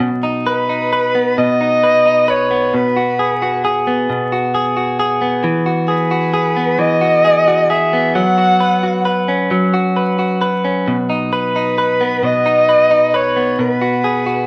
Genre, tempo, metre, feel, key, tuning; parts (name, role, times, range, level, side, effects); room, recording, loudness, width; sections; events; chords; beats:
pop; 44 BPM (dotted quarters); 6/8; straight; B major; A4 = 440 Hz
direct-recorded clean electric guitar; accompaniment; 0.0-14.5 s; B2 to B4; -18 LUFS; equal
warm soprano saxophone; melody; 0.5-14.5 s; B4 to F#5; -17 LUFS; equal
wet studio reverb, RT60 0.7 s; vinyl crackle; -15 LUFS; mono
0.0-14.5 A section
0.0 B; 2.7 G#m7/B; 5.4 Eadd9; 8.1 F#sus4; 10.9 B; 13.6 G#m7/B
| 0.00 1.37 | 2.73 4.08 | 5.43 6.78 | 8.14 9.50 | 10.87 12.24 | 13.59